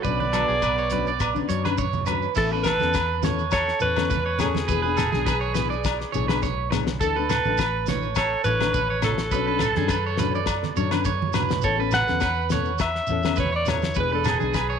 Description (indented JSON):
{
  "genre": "highlife guitar band",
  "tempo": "104 BPM",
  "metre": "4/4",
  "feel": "swing 54% on 16ths",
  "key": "A major",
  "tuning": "A4 = 442 Hz",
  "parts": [
    { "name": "breathy alto saxophone", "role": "melody", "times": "0.0-14.8 s", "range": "G#4 to F#5", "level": "-26 LUFS", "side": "equal", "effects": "tape echo" },
    { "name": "trombone with bucket mute", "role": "second line", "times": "0.0-1.8 s", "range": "B3", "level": "-33 LUFS", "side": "right 11 dB", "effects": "none" },
    { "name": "nylon-string guitar", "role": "accompaniment", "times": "0.0-14.6 s", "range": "E3 to A4", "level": "-30 LUFS", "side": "left 15 dB", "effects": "none" },
    { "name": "electric guitar at the edge of break-up", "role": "arpeggios", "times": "0.0-14.8 s", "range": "E4 to D5", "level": "-27 LUFS", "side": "right 11 dB", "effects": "spring reverb" },
    { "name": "vintage muted fingered electric bass", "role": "bass", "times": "0.0-14.8 s", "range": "E1 to F#2", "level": "-29 LUFS", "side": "left 1 dB", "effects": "none" },
    { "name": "cloth-damped thuddy drum kit", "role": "drums", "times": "0.0-14.7 s", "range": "crash cymbal, hi-hat, kick drum, rim click, snare drum", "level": "-29 LUFS", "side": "left 5 dB", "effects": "none" },
    { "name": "shekere", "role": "percussion", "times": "0.0-14.7 s", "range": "none", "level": "-34 LUFS", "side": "right 6 dB", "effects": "none" },
    { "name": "congas", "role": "percussion", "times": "0.2-14.5 s", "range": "none", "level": "-32 LUFS", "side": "right 7 dB", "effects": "none" },
    { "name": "agogo bells", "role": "percussion", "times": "0.4-14.7 s", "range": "none", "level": "-32 LUFS", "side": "left 15 dB", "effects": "none" }
  ],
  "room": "studio ambience",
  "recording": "1960s-style stereo with parts hard left and right",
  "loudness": "-21 LUFS",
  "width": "side -7 dB against mid",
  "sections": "0.0-2.4 A section; 2.4-14.8 B section",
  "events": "drum fill 10.9-11.6",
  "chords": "0.1 Bmadd9; 2.4 Aadd9; 4.7 E7; 7.0 Dsus2; 9.3 Bmadd9; 11.6 Aadd9; 14.0 E7"
}